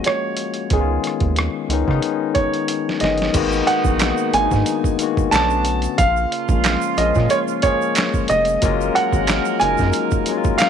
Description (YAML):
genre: R&B, neo-soul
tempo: 91 BPM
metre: 4/4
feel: swing 53% on 16ths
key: G# dorian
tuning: A4 = 439 Hz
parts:
  - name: warm grand piano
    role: melody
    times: 0.0-10.7 s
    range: G#4 to A5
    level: -21 LUFS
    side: right 2 dB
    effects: none
  - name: barky tine electric piano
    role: accompaniment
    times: 0.0-10.7 s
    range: D3 to F#5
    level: -22 LUFS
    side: left 11 dB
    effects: none
  - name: dusty soul sampler-style drum kit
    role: drums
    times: 0.0-10.7 s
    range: crash cymbal, handclaps, hi-hat, kick drum, rim click, snare drum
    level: -22 LUFS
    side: right 2 dB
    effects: none
  - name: rubbery square bass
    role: bass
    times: 0.7-9.9 s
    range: E#1 to C#3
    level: -22 LUFS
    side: right 2 dB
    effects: none
  - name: warm horn section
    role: stabs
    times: 3.3-10.7 s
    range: B2 to A#4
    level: -26 LUFS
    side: right 14 dB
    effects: none
  - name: tube shaker and finger snaps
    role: percussion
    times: 3.3-10.7 s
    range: none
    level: -30 LUFS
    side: right 17 dB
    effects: none
room: studio ambience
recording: 1960s-style stereo with parts hard left and right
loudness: -16 LUFS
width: side -8 dB against mid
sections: 0.0-3.3 A section; 3.3-10.7 B section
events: drum fill 2.7-3.3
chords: 0.0 F#maj9; 0.7 C#7; 3.3 G#m9; 5.3 Bm7; 6.0 A#m7; 8.6 F#maj9